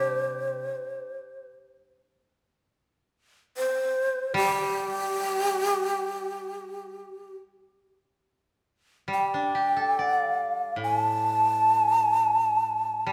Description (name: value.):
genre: japanese traditional.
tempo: free time.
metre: none.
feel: none.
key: unclear.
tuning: A4 = 439 Hz.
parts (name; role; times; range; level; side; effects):
breathy long shakuhachi; melody; 0.0-13.1 s; G4 to A5; -27 LUFS; equal; none.
koto; accompaniment; 0.0-13.1 s; A2 to D5; -34 LUFS; equal; none.
room: wet recital hall reverb, RT60 1.5 s.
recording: recorded in a church or concert hall.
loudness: -26 LUFS.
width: mono.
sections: 0.0-8.2 A section; 8.2-13.1 A section.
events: none.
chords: none.